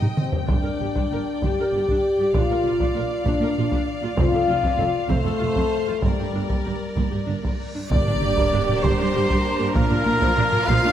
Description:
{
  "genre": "cinematic, epic orchestral film score",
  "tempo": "65 BPM (dotted quarters)",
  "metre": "6/8",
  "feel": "straight",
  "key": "G minor",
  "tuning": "A4 = 439 Hz",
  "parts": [
    { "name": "warm symphonic violin section", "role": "melody", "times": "0.0-10.9 s", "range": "Bb4 to G5", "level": "-35 LUFS", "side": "left 4 dB", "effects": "none" },
    { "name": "clear symphonic violin section", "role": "second line", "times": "0.0-10.9 s", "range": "Bb4 to F5", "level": "-31 LUFS", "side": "equal", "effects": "none" },
    { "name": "warm symphonic viola section", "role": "accompaniment", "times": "0.0-10.9 s", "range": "F3 to Bb4", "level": "-30 LUFS", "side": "right 1 dB", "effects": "none" },
    { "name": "warm symphonic cello section", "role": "bass", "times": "0.0-10.9 s", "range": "F2 to Bb2", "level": "-29 LUFS", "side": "right 3 dB", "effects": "none" },
    { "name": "solo taiko drums", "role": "drums", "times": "0.0-10.9 s", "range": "none", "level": "-25 LUFS", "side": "equal", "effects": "none" },
    { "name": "mellow French horn section", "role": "sustained chords", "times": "0.2-10.9 s", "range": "G3 to G4", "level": "-24 LUFS", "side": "left 3 dB", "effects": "none" },
    { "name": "warm symphonic double bass section", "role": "bass", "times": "0.5-10.7 s", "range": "F1 to Bb1", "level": "-29 LUFS", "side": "right 4 dB", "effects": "none" },
    { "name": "reverse cymbal and sub drop", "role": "sound effects", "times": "7.6-9.8 s", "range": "none", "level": "-34 LUFS", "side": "equal", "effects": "none" },
    { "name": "rich symphonic string section", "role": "sustained chords", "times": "7.9-10.9 s", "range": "D4 to F5", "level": "-30 LUFS", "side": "equal", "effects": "none" },
    { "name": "warm trumpet", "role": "stabs", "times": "7.9-10.9 s", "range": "Bb4 to F5", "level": "-23 LUFS", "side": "right 1 dB", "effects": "none" },
    { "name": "timpani", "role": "percussion", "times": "7.9-8.8 s", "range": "G2", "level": "-31 LUFS", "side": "equal", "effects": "none" }
  ],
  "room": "wet scoring stage reverb, RT60 1.8 s",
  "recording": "none",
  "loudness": "-19 LUFS",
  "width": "side -10 dB against mid",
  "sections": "0.0-7.9 A section; 7.9-10.9 A section",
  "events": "drum fill 0.0-0.5; reverse cymbal 7.6-7.9; impact 7.9-9.8",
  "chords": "0.5 G5; 2.3 Bb; 4.2 F; 6.0 Gm; 9.8 Bb"
}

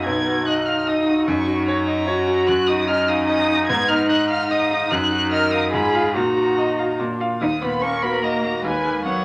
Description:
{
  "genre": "quick classical-period movement for piano quartet",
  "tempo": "147 BPM",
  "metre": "3/4",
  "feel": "straight",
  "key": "Eb minor",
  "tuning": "A4 = 440 Hz",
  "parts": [
    { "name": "muted violin", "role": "melody", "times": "0.0-9.2 s", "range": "F#5 to Ab6", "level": "-27 LUFS", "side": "equal", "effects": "none" },
    { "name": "muted cello", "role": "second line", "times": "0.0-9.2 s", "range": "F#3 to Bb4", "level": "-26 LUFS", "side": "equal", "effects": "none" },
    { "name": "bright grand piano", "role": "accompaniment", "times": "0.0-9.2 s", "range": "B1 to E#5", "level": "-24 LUFS", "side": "equal", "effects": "none" },
    { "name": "muted viola", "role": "accompaniment", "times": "0.0-9.2 s", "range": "C#4 to Db5", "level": "-29 LUFS", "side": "equal", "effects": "none" }
  ],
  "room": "wet studio reverb, RT60 0.7 s",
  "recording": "none",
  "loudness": "-20 LUFS",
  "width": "mono",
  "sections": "0.0-7.4 A section; 7.4-9.2 B section",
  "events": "none",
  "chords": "0.1 B; 1.3 F#; 2.5 Ebm/Gb; 3.7 Abm; 4.9 Ebm/Gb; 5.7 Fdim/Ab; 6.2 Ebm/Bb; 7.0 Bb; 7.4 Ebm; 8.6 B/D#"
}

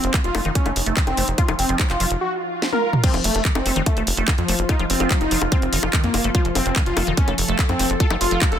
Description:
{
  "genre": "psychedelic trance",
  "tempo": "145 BPM",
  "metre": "4/4",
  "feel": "straight",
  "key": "unclear",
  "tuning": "A4 = 440 Hz",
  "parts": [
    { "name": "wide unison lead", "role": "melody", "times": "0.0-8.6 s", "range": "F3 to Bb4", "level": "-24 LUFS", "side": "equal", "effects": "phaser, sidechain pumping, dub echo" },
    { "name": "evolving wavetable pad", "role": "sustained chords", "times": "0.0-8.6 s", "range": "F3 to A4", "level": "-30 LUFS", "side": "equal", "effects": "chorus, built-in reverb, sidechain pumping" },
    { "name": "tight sequencer bass", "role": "bass", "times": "0.0-8.6 s", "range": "F1 to F2", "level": "-24 LUFS", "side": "equal", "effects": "none" },
    { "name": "garage drum kit", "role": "drums", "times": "0.0-8.6 s", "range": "bongos, crash cymbal, handclaps, hi-hat, snare drum, toms", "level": "-23 LUFS", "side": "left 1 dB", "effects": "none" },
    { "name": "liquid acid bass", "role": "riff", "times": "0.1-8.6 s", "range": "Eb3 to F4", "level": "-28 LUFS", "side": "moving between left 4 dB and right 5 dB", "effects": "chorus, auto-pan, sidechain pumping, digital delay" },
    { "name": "electronic kick drum", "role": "drums", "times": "0.1-8.5 s", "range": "none", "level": "-20 LUFS", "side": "equal", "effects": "none" },
    { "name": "swell", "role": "sound effects", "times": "2.4-3.0 s", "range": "none", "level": "-30 LUFS", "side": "right 3 dB", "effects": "none" }
  ],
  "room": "light reverb",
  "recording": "dense, heavily limited modern master",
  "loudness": "-17 LUFS",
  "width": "side -9 dB against mid",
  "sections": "0.0-3.0 A section; 3.0-8.6 B section",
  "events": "swell 2.4-3.0; drum fill 2.6-3.0; drop 3.0-8.6",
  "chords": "0.0 F5"
}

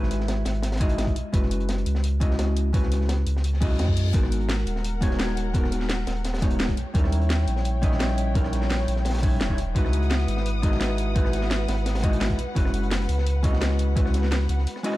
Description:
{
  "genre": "liquid drum and bass",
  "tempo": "171 BPM",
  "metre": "4/4",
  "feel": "straight",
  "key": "unclear",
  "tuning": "A4 = 440 Hz",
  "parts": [
    { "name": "vintage hollow-body jazz guitar", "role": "accompaniment", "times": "0.0-15.0 s", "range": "G3 to D#5", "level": "-28 LUFS", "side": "equal", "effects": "tape echo" },
    { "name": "warm sub bass", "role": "bass", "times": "0.0-14.7 s", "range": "D#1 to F#2", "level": "-25 LUFS", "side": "equal", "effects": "none" },
    { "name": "crunchy breakbeat drum kit", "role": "drums", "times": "0.0-14.9 s", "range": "hi-hat, snare drum", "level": "-36 LUFS", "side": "equal", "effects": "high-pass filter on hats, high-pass filter on snare, high-pass filter on room" },
    { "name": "drum and bass drum kit", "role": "drums", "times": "0.1-15.0 s", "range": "hi-hat, rim click, snare drum", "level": "-32 LUFS", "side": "equal", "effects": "none" },
    { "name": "electronic kick drum", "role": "drums", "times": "0.8-14.0 s", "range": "none", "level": "-23 LUFS", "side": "equal", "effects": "none" },
    { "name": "reverse cymbal", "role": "sound effects", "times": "3.6-4.1 s", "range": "none", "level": "-39 LUFS", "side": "left 5 dB", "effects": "none" },
    { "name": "dark studio string section", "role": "sustained chords", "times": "4.1-15.0 s", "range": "A#4 to D#6", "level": "-34 LUFS", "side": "left 3 dB", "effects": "none" }
  ],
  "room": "small room ambience",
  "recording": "dark, warm production",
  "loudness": "-21 LUFS",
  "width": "side -17 dB against mid",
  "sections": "0.0-15.0 A section",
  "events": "reverse cymbal 3.6-4.1; break 14.7-15.0",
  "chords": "0.0 C#m11 (rootless); 1.2 F#7sus4; 4.1 G#m9; 6.8 D#7b9; 9.8 C#m11; 12.4 F#7sus4"
}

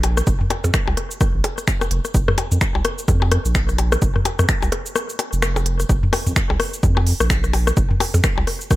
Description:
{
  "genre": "minimal techno",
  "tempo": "128 BPM",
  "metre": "4/4",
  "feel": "swing 59% on 16ths",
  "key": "unclear",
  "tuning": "A4 = 440 Hz",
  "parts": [
    { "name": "saturated sub bass", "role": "bass", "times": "0.0-8.4 s", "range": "F1 to F2", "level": "-20 LUFS", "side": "equal", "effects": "tube saturation, sidechain pumping" },
    { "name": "techno drum kit", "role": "drums", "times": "0.0-8.8 s", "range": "cabasa, finger snaps, hi-hat", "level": "-26 LUFS", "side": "right 1 dB", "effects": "none" },
    { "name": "minimal click drum kit", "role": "percussion", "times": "0.0-8.8 s", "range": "percussion blips, rim click, toms", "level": "-22 LUFS", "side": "left 2 dB", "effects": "analog delay" },
    { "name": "electronic kick drum", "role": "drums", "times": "0.3-8.8 s", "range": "none", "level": "-20 LUFS", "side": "equal", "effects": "none" }
  ],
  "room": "digital ambience",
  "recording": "none",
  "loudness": "-17 LUFS",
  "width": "side -16 dB against mid",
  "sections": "0.0-8.8 A section",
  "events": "kick drops out 5.0-5.9",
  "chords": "none"
}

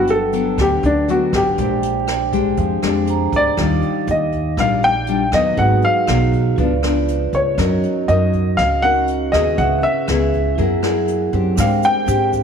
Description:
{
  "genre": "bossa nova",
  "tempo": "120 BPM",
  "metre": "4/4",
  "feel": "straight",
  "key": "unclear",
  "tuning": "A4 = 440 Hz",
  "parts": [
    { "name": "warm baby grand piano", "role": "melody", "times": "0.0-12.3 s", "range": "D4 to G5", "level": "-18 LUFS", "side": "left 1 dB", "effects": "none" },
    { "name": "nylon-string guitar", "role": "accompaniment", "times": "0.0-12.4 s", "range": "G2 to Bb4", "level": "-21 LUFS", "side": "left 11 dB", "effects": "none" },
    { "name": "vibraphone with medium hard mallets", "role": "accompaniment", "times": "0.0-12.4 s", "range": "Db4 to D6", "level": "-23 LUFS", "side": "right 14 dB", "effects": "auto-pan" },
    { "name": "upright bass", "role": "bass", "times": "0.0-12.4 s", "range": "G1 to Ab2", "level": "-21 LUFS", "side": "right 1 dB", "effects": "none" },
    { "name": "jazz brush drum kit", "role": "drums", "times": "0.1-12.4 s", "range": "hi-hat, kick drum, rim click", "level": "-28 LUFS", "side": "equal", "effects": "none" },
    { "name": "tube shaker", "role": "percussion", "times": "11.6-12.4 s", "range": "none", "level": "-34 LUFS", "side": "right 18 dB", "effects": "none" }
  ],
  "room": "light reverb, studio reverb",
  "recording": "1960s-style stereo with parts hard left and right",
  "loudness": "-15 LUFS",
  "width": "side -7 dB against mid",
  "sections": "0.0-3.6 A section; 3.6-12.4 B section",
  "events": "none",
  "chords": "0.0 Gmaj7; 1.6 Bb13; 3.6 Ebmaj9; 5.6 Abm7; 6.6 Db7b9; 7.6 Gb6; 9.6 Dbm7; 10.6 Gb9; 11.6 Abmaj9#11"
}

